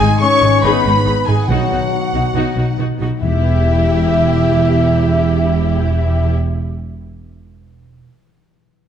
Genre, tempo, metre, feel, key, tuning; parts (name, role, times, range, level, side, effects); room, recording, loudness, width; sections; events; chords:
cinematic; 141 BPM; 4/4; straight; E harmonic minor; A4 = 441 Hz
warm symphonic violin section; melody; 0.0-6.3 s; G4 to C#6; -26 LUFS; left 5 dB
mellow hollow concert flute; second line; 0.0-6.3 s; E5 to C#6; -21 LUFS; left 3 dB
warm symphonic violin section; second line; 0.0-6.3 s; E5 to C#6; -25 LUFS; left 3 dB
rich symphonic viola section; accompaniment; 0.0-6.3 s; D#4 to G#4; -25 LUFS; right 1 dB
mellow French horn section; sustained chords; 0.0-6.3 s; F#3 to E4; -22 LUFS; left 4 dB
concert harp; arpeggios; 0.0-7.1 s; G#2 to G5; -23 LUFS; left 6 dB
dark trumpet section; stabs; 0.0-6.3 s; F#4 to E5; -23 LUFS; equal
warm studio cello section; bass; 0.0-6.3 s; E2 to B2; -19 LUFS; right 2 dB
warm symphonic double bass section; bass; 0.0-6.3 s; E1 to B1; -20 LUFS; right 3 dB
timpani; percussion; 1.5-6.3 s; E2 to B2; -23 LUFS; right 1 dB
moderate scoring stage reverb, RT60 1.6 s; dark, warm production; -12 LUFS; side -9 dB against mid
0.0-3.2 A section; 3.2-6.6 B section
0.0 G#m; 1.5 B; 3.2 Em